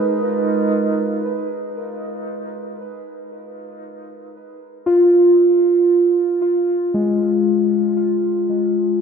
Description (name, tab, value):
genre	ambient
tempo	free time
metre	none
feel	none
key	unclear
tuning	A4 = 440 Hz
part	muted felt-like synth keys	arpeggios	0.0-9.0 s	Ab3 to Cb5	-16 LUFS	right 1 dB	chorus, tape echo
room	wet lush hall reverb, RT60 3.1 s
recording	dreamy mix soaked in reverb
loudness	-15 LUFS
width	side -6 dB against mid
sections	0.0-1.2 A section; 1.2-9.0 B section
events	none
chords	0.0 Abm